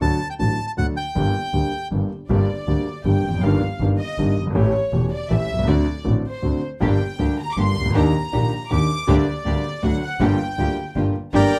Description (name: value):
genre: tango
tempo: 159 BPM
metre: 3/4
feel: rubato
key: G minor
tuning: A4 = 440 Hz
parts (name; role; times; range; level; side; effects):
- bandoneon; melody; 0.0-1.9, 11.4-11.6 s; Bb4 to A5; -26 LUFS; equal; plate reverb
- warm concert grand piano; accompaniment; 0.0-11.5 s; E1 to G4; -24 LUFS; equal; none
- clear double bass; bass; 0.0-11.5 s; E1 to Eb2; -25 LUFS; equal; none
- warm studio violin section; second line; 2.3-11.6 s; C5 to D6; -31 LUFS; equal; none
- dark studio string section; stabs; 6.8-11.5 s; A3 to G4; -30 LUFS; equal; none
room: moderate studio ambience, RT60 0.5 s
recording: dark, warm production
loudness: -21 LUFS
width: mono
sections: 0.0-2.3 A section; 2.3-11.3 B section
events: violin section solo 2.3-11.3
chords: 0.0 D; 1.2 Gm; 3.4 Ebmaj7/G; 4.6 A7; 5.7 D7; 6.8 Gm; 7.9 Ebmaj7; 9.1 Gm/D; 9.8 D; 10.2 Gm7